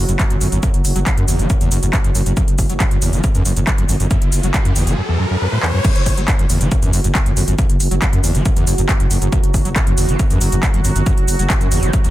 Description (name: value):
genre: driving peak-time techno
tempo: 138 BPM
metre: 4/4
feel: straight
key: unclear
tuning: A4 = 441 Hz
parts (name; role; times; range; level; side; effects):
- screaming distorted acid line; riff; 0.0-12.1 s; E2 to F#3; -21 LUFS; equal; distortion, ensemble chorus, sidechain pumping
- growling FM bass; bass; 0.0-12.1 s; F#1 to F#2; -18 LUFS; equal; sidechain pumping
- deep dark ambient pad; drone; 0.0-12.1 s; F#3 to F#4; -26 LUFS; right 3 dB; chorus, built-in reverb, sidechain pumping
- techno drum kit; drums; 0.1-12.1 s; crash cymbal, handclaps, hi-hat, shaker; -22 LUFS; equal; overdrive, sidechain pumping on hats, sidechain pumping on perc, sidechain pumping on cymbals
- electronic kick drum; drums; 0.2-12.0 s; none; -17 LUFS; equal; none
- riser; sound effects; 3.8-5.8 s; none; -26 LUFS; left 1 dB; none
room: little or no reverb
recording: dense, heavily limited modern master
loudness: -13 LUFS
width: side -15 dB against mid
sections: 0.0-5.8 A section; 5.8-12.1 B section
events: riser 3.8-5.8; drum fill 5.6; drop 5.8-12.1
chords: none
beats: 0.20 | 0.63 1.06 1.50 1.93 | 2.37 2.80 3.24 3.67 | 4.11 4.54 4.98 5.41 | 5.85 6.28 6.72 7.15 | 7.59 8.02 8.46 8.89 | 9.32 9.76 10.20 10.63 | 11.06 11.50 11.93